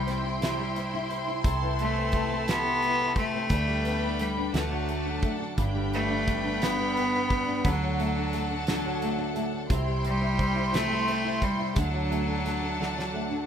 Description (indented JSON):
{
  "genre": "six-eight pop ballad",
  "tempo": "58 BPM (dotted quarters)",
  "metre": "6/8",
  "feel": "straight",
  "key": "G major",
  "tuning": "A4 = 440 Hz",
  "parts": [
    { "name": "bright cello", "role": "melody", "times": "0.0-13.5 s", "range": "F#3 to B3", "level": "-29 LUFS", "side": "left 1 dB", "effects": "none" },
    { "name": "flamenco guitar", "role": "accompaniment", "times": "0.0-13.5 s", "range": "G2 to E4", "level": "-31 LUFS", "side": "equal", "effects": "double-tracked left and right" },
    { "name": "warm studio string section", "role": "sustained chords", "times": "0.0-13.5 s", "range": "D4 to C6", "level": "-32 LUFS", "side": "equal", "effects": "none" },
    { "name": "vintage muted fingered electric bass", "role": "bass", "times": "0.0-13.5 s", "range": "G1 to D2", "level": "-33 LUFS", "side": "right 1 dB", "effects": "none" },
    { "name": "loose indie drum kit", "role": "drums", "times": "0.1-13.1 s", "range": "hi-hat, kick drum, snare drum", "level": "-30 LUFS", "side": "right 1 dB", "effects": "none" }
  ],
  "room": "wet small room reverb, RT60 0.6 s",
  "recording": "rough home demo mix",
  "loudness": "-25 LUFS",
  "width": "side -8 dB against mid",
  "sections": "0.0-13.5 A section",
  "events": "drum fill 12.8-13.5",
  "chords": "0.0 C; 1.4 Am/C; 3.5 G/D; 4.5 D; 5.6 G; 7.6 D; 9.7 C; 11.8 D"
}